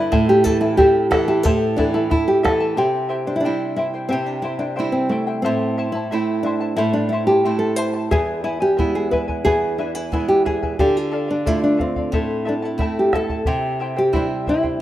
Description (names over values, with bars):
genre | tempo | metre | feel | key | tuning
andean folk, Andean ensemble | 90 BPM | 2/4 | straight | A minor | A4 = 439 Hz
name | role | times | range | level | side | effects
nylon-string guitar | melody | 0.0-14.8 s | A3 to C5 | -20 LUFS | equal | none
charango | accompaniment | 0.0-14.8 s | E4 to B5 | -26 LUFS | left 4 dB | none
nylon-string guitar | accompaniment | 0.0-14.8 s | E2 to F4 | -23 LUFS | right 3 dB | none
bombo | percussion | 0.1-2.6, 8.1-14.8 s | none | -23 LUFS | equal | none
room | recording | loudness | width
moderate lush hall reverb, RT60 2.4 s | rough home demo mix | -17 LUFS | side -13 dB against mid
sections
0.0-2.8 A section; 2.8-13.5 B section; 13.5-14.8 B section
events
none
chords
0.1 Am; 2.8 C; 5.5 Am; 8.1 E; 10.8 Dm; 12.1 Am; 13.5 C